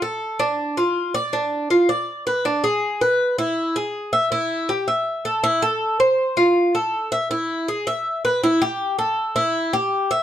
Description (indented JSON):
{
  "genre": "latin",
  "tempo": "161 BPM",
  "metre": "4/4",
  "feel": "straight",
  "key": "A minor",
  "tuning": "A4 = 440 Hz",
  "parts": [
    { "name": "Cuban tres", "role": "solo", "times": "0.0-10.2 s", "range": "D4 to E5", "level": "-18 LUFS", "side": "equal", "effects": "none" }
  ],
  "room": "moderate studio reverb, RT60 0.6 s",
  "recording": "dark, warm production",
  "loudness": "-18 LUFS",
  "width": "side -11 dB against mid",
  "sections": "0.0-10.2 A section",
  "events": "none",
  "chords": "none"
}